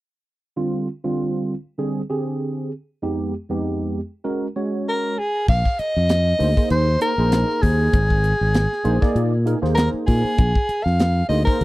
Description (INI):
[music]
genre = electric jazz fusion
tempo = 98 BPM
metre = 4/4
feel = swing 55% on 16ths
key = Bb mixolydian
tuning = A4 = 441 Hz
[part]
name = tine electric piano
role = accompaniment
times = 0.6-11.6 s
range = F2 to D5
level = -23 LUFS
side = right 2 dB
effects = analog chorus
[part]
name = breathy soprano saxophone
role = melody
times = 4.9-11.6 s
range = Ab4 to F5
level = -22 LUFS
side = equal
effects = none
[part]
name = fingered electric bass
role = bass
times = 5.5-11.6 s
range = Ab1 to Bb2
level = -19 LUFS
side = equal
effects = none
[part]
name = crisp fusion drum kit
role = drums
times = 5.5-11.6 s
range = crash cymbal, hi-hat, kick drum, snare drum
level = -20 LUFS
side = equal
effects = none
[sound]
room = little or no reverb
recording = dry, close 1970s-style studio recording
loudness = -18 LUFS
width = side -18 dB against mid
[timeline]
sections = 0.6-5.5 A section; 5.5-11.6 B section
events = none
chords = 0.6 Fm69/D; 3.0 Fm7b5; 4.3 Ab9sus4; 5.5 Bb9sus4